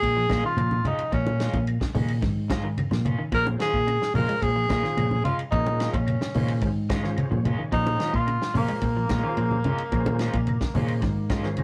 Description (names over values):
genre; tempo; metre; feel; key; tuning
afrobeat; 109 BPM; 4/4; straight; Bb minor; A4 = 440 Hz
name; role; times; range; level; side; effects
clear tenor saxophone; melody; 0.0-11.5 s; Bb3 to Bb4; -29 LUFS; equal; none
clean electric guitar; arpeggios; 0.0-11.6 s; Bb2 to Ab3; -36 LUFS; equal; none
fingered electric bass; bass; 0.0-11.6 s; Ab2 to Bb2; -29 LUFS; equal; none
warm soul drum kit; drums; 0.0-11.6 s; hi-hat, kick drum, ride cymbal, snare drum; -34 LUFS; equal; none
electric guitar at the edge of break-up; stabs; 0.3-11.5 s; Ab3 to F4; -38 LUFS; equal; harmonic tremolo
claves; percussion; 0.3-11.6 s; none; -47 LUFS; equal; none
congas; percussion; 0.3-11.6 s; none; -32 LUFS; equal; none
overdriven tonewheel organ; accompaniment; 3.3-11.6 s; Db4 to Db5; -39 LUFS; equal; slow rotary speaker, chorus vibrato
room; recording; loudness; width
wet small room reverb, RT60 0.5 s; rough rehearsal-room recording, tube saturation; -25 LUFS; mono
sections
0.0-11.6 A section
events
tonewheel organ fill 6.9-7.7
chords
0.0 Bbm7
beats
0.03 0.58 | 1.13 1.68 2.23 2.77 | 3.33 3.88 4.42 4.97 | 5.53 6.08 6.63 7.18 | 7.73 8.28 8.83 9.38 | 9.93 10.48 11.03 11.58